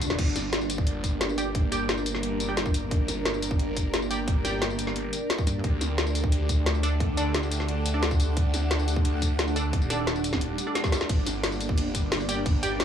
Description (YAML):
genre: dark technical drum and bass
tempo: 176 BPM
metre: 4/4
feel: straight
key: G harmonic minor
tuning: A4 = 441 Hz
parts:
  - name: dark analog pad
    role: sustained chords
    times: 0.0-12.8 s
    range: A3 to D5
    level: -36 LUFS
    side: right 2 dB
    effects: chorus, sidechain pumping
  - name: filtered dub chord stab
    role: stabs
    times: 0.0-12.8 s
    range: D4 to G5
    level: -34 LUFS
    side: right 2 dB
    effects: chorus, dub echo
  - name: phased detuned saw bass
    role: bass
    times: 0.0-12.8 s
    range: Eb1 to D2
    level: -29 LUFS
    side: equal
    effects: phaser
  - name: drum and bass drum kit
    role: drums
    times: 0.0-12.8 s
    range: crash cymbal, hi-hat, ride cymbal, snare drum, tambourine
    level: -29 LUFS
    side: left 2 dB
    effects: none
  - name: granular cloud pad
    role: texture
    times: 0.0-12.8 s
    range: D4 to G5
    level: -33 LUFS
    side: right 1 dB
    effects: built-in reverb, sidechain pumping
  - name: electronic kick drum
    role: drums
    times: 0.2-12.5 s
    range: none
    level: -26 LUFS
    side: equal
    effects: none
  - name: pulsing pluck wobble bass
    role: bass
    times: 5.5-5.6 s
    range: G2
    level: -28 LUFS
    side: left 1 dB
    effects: chorus
  - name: swell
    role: sound effects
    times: 10.5-11.1 s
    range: none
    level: -37 LUFS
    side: equal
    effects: none
room: light reverb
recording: small room ambience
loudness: -24 LUFS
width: side -8 dB against mid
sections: 0.2-12.8 A section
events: drum fill 0.0, 10.8-11.1; drop 0.2-12.8; swell 10.5-11.1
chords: 0.2 Gm; 5.6 D; 11.1 Gm